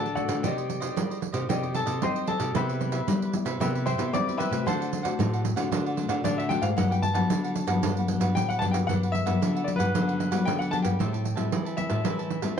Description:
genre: samba and choro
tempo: 114 BPM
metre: 4/4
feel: straight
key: G major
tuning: A4 = 436 Hz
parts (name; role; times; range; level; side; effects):
- clear concert grand piano; melody; 0.0-12.6 s; F#4 to D6; -30 LUFS; left 3 dB; none
- nylon-string guitar; accompaniment; 0.0-12.6 s; G2 to D5; -31 LUFS; left 4 dB; none
- nylon-string guitar; bass; 0.0-12.5 s; G2 to C4; -29 LUFS; equal; none
- pandeiro; percussion; 0.1-12.6 s; none; -31 LUFS; right 6 dB; none
- cavaquinho; accompaniment; 0.4-12.6 s; D4 to A5; -36 LUFS; right 4 dB; none
room: wet studio ambience, RT60 0.5 s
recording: dark, warm production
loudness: -24 LUFS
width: side -8 dB against mid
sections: 0.0-8.9 A section; 8.9-12.6 B section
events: grand piano solo 0.0-8.9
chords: 0.4 Cmadd9; 2.5 Cmaj7; 4.7 D7; 6.8 Gmaj7; 11.0 Am7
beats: | 0.44 0.97 1.49 2.02 | 2.55 3.08 3.61 4.13 | 4.66 5.19 5.72 6.25 | 6.77 7.30 7.83 8.36 | 8.89 9.41 9.94 10.47 | 11.00 11.53 12.06 12.58

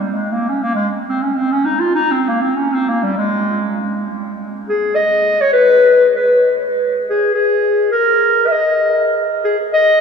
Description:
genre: alpine folk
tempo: 100 BPM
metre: 2/4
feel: swing 54% on 8ths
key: Ab major, G# minor from 4.4 s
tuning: A4 = 439 Hz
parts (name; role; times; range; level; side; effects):
- mellow clarinet; solo; 0.0-10.0 s; G3 to E5; -13 LUFS; left 1 dB; none
room: wet cathedral reverb, RT60 6.9 s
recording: recorded in a church or concert hall, small room reverb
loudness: -13 LUFS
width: side -6 dB against mid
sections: 0.0-4.4 A section; 4.4-10.0 B section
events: none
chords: none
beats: 0.11 | 0.72 1.32 | 1.93 2.53 | 3.13 3.74 | 4.35 4.96 | 5.55 6.15 | 6.74 7.33 | 7.92 8.52 | 9.12 9.72

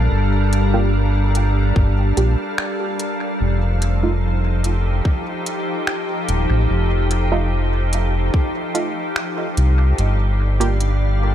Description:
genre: ambient dub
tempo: 73 BPM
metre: 4/4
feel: straight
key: G minor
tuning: A4 = 439 Hz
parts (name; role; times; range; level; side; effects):
- soft additive organ-like pad; sustained chords; 0.0-11.3 s; F3 to F5; -22 LUFS; equal; ensemble chorus, built-in reverb
- round analog bass; bass; 0.0-11.3 s; Eb1 to C2; -17 LUFS; equal; none
- organic electronic drum kit; drums; 0.5-11.0 s; finger snaps, hi-hat; -27 LUFS; equal; studio reverb, dub echo
- filtered dub chord stab; stabs; 0.7-10.8 s; A3 to G4; -27 LUFS; right 4 dB; chorus, dub echo
- electronic kick drum; drums; 1.8-8.5 s; none; -17 LUFS; equal; studio reverb
room: little or no reverb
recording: none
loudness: -16 LUFS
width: side -11 dB against mid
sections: 0.0-10.0 A section; 10.0-11.3 B section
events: none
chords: 0.0 Gm7; 3.4 F7; 10.0 Gm7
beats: | 0.12 0.94 1.76 2.58 | 3.40 4.23 5.05 5.87 | 6.69 7.51 8.34 9.16 | 9.98 10.80

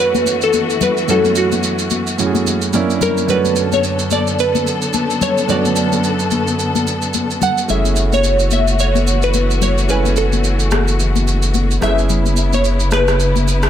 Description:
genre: amapiano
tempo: 109 BPM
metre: 4/4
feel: swing 58% on 16ths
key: F# minor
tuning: A4 = 439 Hz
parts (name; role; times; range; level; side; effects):
- glassy wavetable pluck; melody; 0.0-13.7 s; F#4 to F#5; -18 LUFS; equal; chorus, digital delay
- clear concert grand piano; accompaniment; 0.0-13.7 s; F#2 to G#5; -22 LUFS; right 5 dB; none
- muted studio string section; sustained chords; 0.0-13.7 s; F#2 to A4; -22 LUFS; left 2 dB; none
- electronic shaker and rim click; drums; 0.1-13.7 s; none; -23 LUFS; right 2 dB; none
- congas; percussion; 0.1-13.6 s; none; -23 LUFS; left 6 dB; none
- sub bass with octave; bass; 7.7-13.7 s; F#1; -16 LUFS; equal; none
room: light reverb, studio reverb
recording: none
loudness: -13 LUFS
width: side -10 dB against mid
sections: 0.0-13.7 A section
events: none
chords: 0.0 F#m7; 2.7 F#7b13; 3.3 Bm7/F#; 7.7 F#m7; 11.8 C#m7/F#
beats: 0.54 | 1.09 1.64 2.19 2.74 | 3.29 3.84 4.39 4.94 | 5.49 6.04 6.59 7.14 | 7.69 8.24 8.79 9.34 | 9.89 10.44 10.99 11.54 | 12.10 12.65 13.20

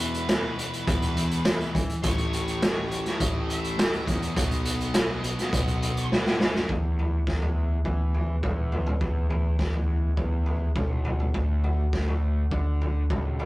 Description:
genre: quiet-loud alternative rock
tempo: 103 BPM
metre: 4/4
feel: straight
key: E major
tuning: A4 = 441 Hz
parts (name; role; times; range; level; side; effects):
- octave-fuzz lead guitar; melody; 0.0-6.1 s; B4 to E5; -36 LUFS; left 1 dB; distortion
- rich studio string section; sustained chords; 0.0-6.7 s; G#3 to E5; -45 LUFS; right 1 dB; none
- thick fuzz guitar; riff; 0.0-6.7 s; E2 to B3; -34 LUFS; left 4 dB; distortion
- tight distorted guitar; riff; 0.0-6.7 s; E2 to B3; -36 LUFS; right 4 dB; distortion
- fuzz picked electric bass; bass; 0.0-13.5 s; A1 to E3; -32 LUFS; equal; overdrive
- raw garage drum kit; drums; 0.1-13.5 s; hi-hat, kick drum, snare drum, toms; -25 LUFS; equal; none
- electric guitar through a small old amp; arpeggios; 6.7-13.5 s; D3 to F#4; -38 LUFS; equal; phaser, analog delay
room: light reverb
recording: rough rehearsal-room recording, tube saturation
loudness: -23 LUFS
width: side -19 dB against mid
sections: 0.0-6.7 A section; 6.7-13.5 B section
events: drum fill 6.1-6.7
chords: 0.0 Eadd9; 2.0 A; 4.4 Badd9; 6.7 E; 11.3 D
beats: 0.29 0.87 1.46 | 2.04 2.62 3.20 3.79 | 4.37 4.94 5.52 6.10 | 6.68 7.26 7.84 8.43 | 9.01 9.59 10.17 10.76 | 11.34 11.93 12.51 13.10

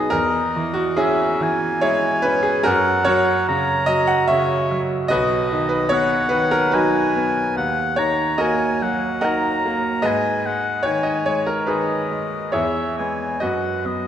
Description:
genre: classical, romantic duo for oboe and grand piano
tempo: 73 BPM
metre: 3/4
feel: rubato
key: B major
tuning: A4 = 440 Hz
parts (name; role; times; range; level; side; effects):
- clear oboe; melody; 0.0-14.1 s; C#5 to A#5; -22 LUFS; left 1 dB; none
- bright concert grand piano; accompaniment; 0.0-14.1 s; B1 to F#5; -19 LUFS; right 1 dB; none
room: wet concert hall reverb, RT60 2.1 s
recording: minimal, uncompressed stereo recording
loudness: -17 LUFS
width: side -9 dB against mid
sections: 0.0-14.1 A section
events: none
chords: 0.1 C#m/E; 2.6 F#; 5.1 B; 7.6 D#m; 10.0 G#m; 12.5 C#m7/E; 13.4 B/F#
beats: | 0.12 0.97 1.82 | 2.65 3.46 4.29 | 5.11 5.93 6.75 | 7.57 8.40 9.23 | 10.04 10.85 11.69 | 12.54 13.40

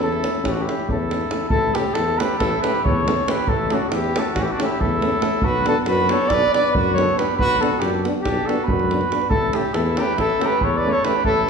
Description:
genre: balkan folk, Balkan brass band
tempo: 278 BPM (eighths)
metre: 9/8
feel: straight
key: A mixolydian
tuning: A4 = 440 Hz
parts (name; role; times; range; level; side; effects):
- clear flugelhorn; melody; 0.0-11.5 s; F#4 to D5; -21 LUFS; equal; none
- mellow trumpet; second line; 0.0-11.5 s; C#4 to B4; -27 LUFS; left 2 dB; none
- clear euphonium; accompaniment; 0.0-11.1 s; A3 to B3; -29 LUFS; right 4 dB; none
- warm French horn; accompaniment; 0.0-11.5 s; C#4 to D4; -30 LUFS; left 4 dB; none
- mellow tuba; bass; 0.0-11.5 s; A1 to F#2; -26 LUFS; left 1 dB; none
- davul; percussion; 0.0-11.4 s; none; -25 LUFS; right 2 dB; none
room: wet recital hall reverb, RT60 1.5 s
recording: recorded in a church or concert hall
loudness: -17 LUFS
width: side -5 dB against mid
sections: 0.0-1.5 A section; 1.5-11.5 B section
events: none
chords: 0.0 A; 5.4 Bm; 9.3 A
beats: 0.21 0.43 0.65 0.87 1.08 1.30 | 1.52 1.74 1.96 2.17 2.39 2.61 2.83 3.04 3.26 | 3.48 3.69 3.91 4.12 4.34 4.56 4.77 4.99 5.21 | 5.42 5.64 5.85 6.07 6.28 6.50 6.72 6.93 7.15 | 7.36 7.58 7.79 8.01 8.22 8.44 8.66 8.87 9.09 | 9.30 9.52 9.73 9.95 10.16 10.38 10.60 10.81 11.03 | 11.24 11.46

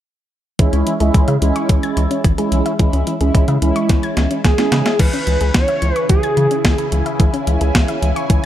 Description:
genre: synth-pop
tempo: 109 BPM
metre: 4/4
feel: straight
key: C# minor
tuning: A4 = 441 Hz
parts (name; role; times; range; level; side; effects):
- mellow synth brass; accompaniment; 0.6-4.9 s; G#3 to E4; -19 LUFS; right 2 dB; chorus
- soft round pluck; arpeggios; 0.6-8.4 s; E3 to G#6; -24 LUFS; left 4 dB; chorus, digital delay
- round analog bass; bass; 0.6-8.4 s; G#1 to C#3; -17 LUFS; equal; none
- clean 12-bit digital drum machine; drums; 0.6-8.4 s; crash cymbal, hi-hat, kick drum, snare drum; -16 LUFS; equal; overdrive
- octave-doubled lead; melody; 4.4-6.9 s; G#4 to C#5; -19 LUFS; right 1 dB; chorus, digital delay
- string machine, cellos; sustained chords; 5.0-8.5 s; C#3 to G#5; -23 LUFS; equal; phaser, ensemble chorus
room: light reverb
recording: none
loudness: -13 LUFS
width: side -12 dB against mid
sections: 0.6-5.0 A section; 5.0-8.5 B section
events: drum fill 3.9-5.0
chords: 0.6 C#m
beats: | 0.59 1.14 1.69 2.24 | 2.79 3.34 3.90 4.45 | 5.00 5.55 6.10 6.65 | 7.20 7.75 8.30

